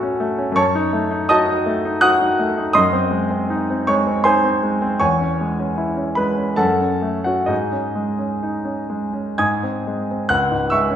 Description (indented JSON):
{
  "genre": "classical, romantic character piece for solo piano",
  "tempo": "59-85 BPM",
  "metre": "3/4",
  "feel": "rubato",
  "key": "unclear",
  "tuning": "A4 = 440 Hz",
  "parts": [
    { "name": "clear concert grand piano", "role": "solo", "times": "0.0-11.0 s", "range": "C#2 to G#6", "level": "-17 LUFS", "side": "equal", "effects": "none" }
  ],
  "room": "wet recital hall reverb, RT60 1.3 s",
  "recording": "recorded in a church or concert hall",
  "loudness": "-17 LUFS",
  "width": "side -9 dB against mid",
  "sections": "0.0-10.3 A section",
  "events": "none",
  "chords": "0.0 F#m/A; 0.6 D#m7b5/F#; 2.8 G#7/F#; 5.0 C#m/E; 6.6 F#m; 7.5 G#sus4; 9.4 G#; 10.3 C#m"
}